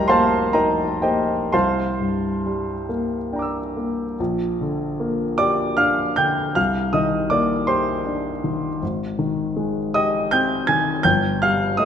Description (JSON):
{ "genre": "classical, impressionist solo piano", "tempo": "40-55 BPM (dotted quarters)", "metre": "6/8", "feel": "rubato", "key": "Bb major", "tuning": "A4 = 441 Hz", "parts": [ { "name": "clear baby grand piano", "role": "solo", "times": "0.0-11.9 s", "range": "F1 to Ab6", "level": "-18 LUFS", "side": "equal", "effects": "none" } ], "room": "moderate concert hall reverb, RT60 1.9 s", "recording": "minimal, uncompressed stereo recording", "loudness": "-19 LUFS", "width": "side -8 dB against mid", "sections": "0.0-4.2 A section; 4.2-11.9 B section", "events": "none", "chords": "0.0 F11; 1.5 C9; 4.2 Bb6; 6.6 Cm9; 8.8 Abmaj7; 11.1 N.C.", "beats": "0.11 | 1.52 2.90 | 4.19 5.38 | 6.55 7.68 | 8.82 9.94 | 11.05" }